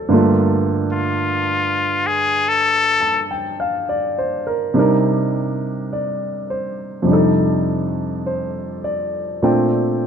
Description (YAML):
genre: jazz ballad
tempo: 52 BPM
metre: 4/4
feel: swing 67% on 8ths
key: unclear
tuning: A4 = 442 Hz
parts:
  - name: warm baby grand piano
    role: accompaniment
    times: 0.0-10.1 s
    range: F2 to A5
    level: -18 LUFS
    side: right 1 dB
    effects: none
  - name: trumpet with straight mute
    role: melody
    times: 0.9-3.2 s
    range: F4 to A4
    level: -17 LUFS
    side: left 4 dB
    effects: none
room: light reverb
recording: dark, warm production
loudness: -16 LUFS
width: side -7 dB against mid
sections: 0.0-10.1 A section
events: muted trumpet solo 0.0-10.1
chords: 0.1 Gm9; 4.8 Cm7; 7.1 F13; 9.4 Bbmaj13